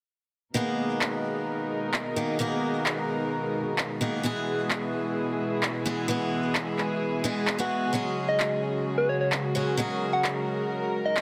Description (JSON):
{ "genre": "EDM, festival progressive house", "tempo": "130 BPM", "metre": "4/4", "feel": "straight", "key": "G# minor", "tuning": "A4 = 440 Hz", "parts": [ { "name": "picked swing-style acoustic guitar", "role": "accompaniment", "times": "0.5-11.2 s", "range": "D#3 to G#4", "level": "-32 LUFS", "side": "equal", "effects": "delay" }, { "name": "dark studio string section", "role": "sustained chords", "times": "0.6-11.2 s", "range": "B2 to A#4", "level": "-33 LUFS", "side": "equal", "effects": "low-pass filter" }, { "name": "electronic handclaps", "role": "drums", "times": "1.0-11.2 s", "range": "none", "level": "-34 LUFS", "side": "equal", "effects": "overdrive" }, { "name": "soft struck synth lead", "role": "melody", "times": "8.3-11.2 s", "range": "B4 to F#5", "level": "-31 LUFS", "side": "equal", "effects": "chorus, cassette tape, delay" } ], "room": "light reverb, studio ambience", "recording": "dense, heavily limited modern master", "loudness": "-28 LUFS", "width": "mono", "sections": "0.6-11.2 A section", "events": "none", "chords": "0.6 G#madd9; 4.2 E; 7.9 F#sus2" }